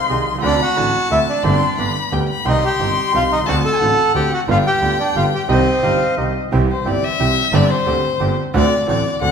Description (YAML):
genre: tango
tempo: 178 BPM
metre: 3/4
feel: rubato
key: C minor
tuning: A4 = 437 Hz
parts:
  - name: mellow clarinet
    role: second line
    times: 0.0-0.3, 5.8-6.5 s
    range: Eb5 to F5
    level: -27 LUFS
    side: left 7 dB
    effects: none
  - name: warm violin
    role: second line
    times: 0.0-9.3 s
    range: C5 to C6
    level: -21 LUFS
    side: left 5 dB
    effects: none
  - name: clear concert grand piano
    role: accompaniment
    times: 0.1-9.3 s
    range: G1 to Ab4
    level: -20 LUFS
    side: right 2 dB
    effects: none
  - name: bandoneon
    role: stabs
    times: 0.1-9.3 s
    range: B3 to Ab4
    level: -29 LUFS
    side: right 5 dB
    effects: none
  - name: rich double bass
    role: bass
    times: 0.1-9.3 s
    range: G1 to D2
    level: -22 LUFS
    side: right 2 dB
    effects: none
  - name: bandoneon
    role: melody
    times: 0.5-6.2 s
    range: C4 to A5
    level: -18 LUFS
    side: right 1 dB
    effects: none
room: wet recital hall reverb, RT60 1.6 s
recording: minimal, uncompressed stereo recording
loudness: -14 LUFS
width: side -6 dB against mid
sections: 0.0-6.5 A section; 6.5-9.3 B section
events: violin solo 6.5-9.3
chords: 0.4 D7; 1.4 Gsus4; 1.8 G; 2.5 Cm; 3.5 D7; 4.5 G7; 5.5 Cm; 6.5 C; 7.5 Gsus4; 8.5 D7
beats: 0.10 | 0.43 0.77 1.11 | 1.45 1.78 2.12 | 2.46 2.81 3.14 | 3.48 3.82 4.16 | 4.49 4.83 5.17 | 5.50 5.84 6.18 | 6.52 6.86 7.20 | 7.54 7.88 8.21 | 8.55 8.88 9.22